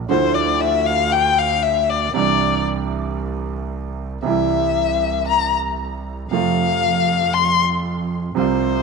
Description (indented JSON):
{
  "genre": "tango",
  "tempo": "117 BPM",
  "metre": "4/4",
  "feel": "rubato",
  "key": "F major",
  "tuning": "A4 = 443 Hz",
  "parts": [
    { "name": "warm violin", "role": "second line", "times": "0.1-8.8 s", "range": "C5 to C6", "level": "-18 LUFS", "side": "left 8 dB", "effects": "none" },
    { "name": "warm concert grand piano", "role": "accompaniment", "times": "0.1-8.8 s", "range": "C2 to F4", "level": "-22 LUFS", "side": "right 12 dB", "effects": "none" },
    { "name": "rich double bass", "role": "bass", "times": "0.1-8.8 s", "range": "C2 to F2", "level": "-26 LUFS", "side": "right 2 dB", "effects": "none" }
  ],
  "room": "moderate echo chamber reverb, RT60 2.3 s",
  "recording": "1960s-style stereo with parts hard left and right",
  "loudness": "-17 LUFS",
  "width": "side -4 dB against mid",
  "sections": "0.0-8.8 A section",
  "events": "violin solo 0.0-8.8",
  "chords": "0.1 Dmadd9; 2.2 Cadd9; 4.2 C; 6.3 F"
}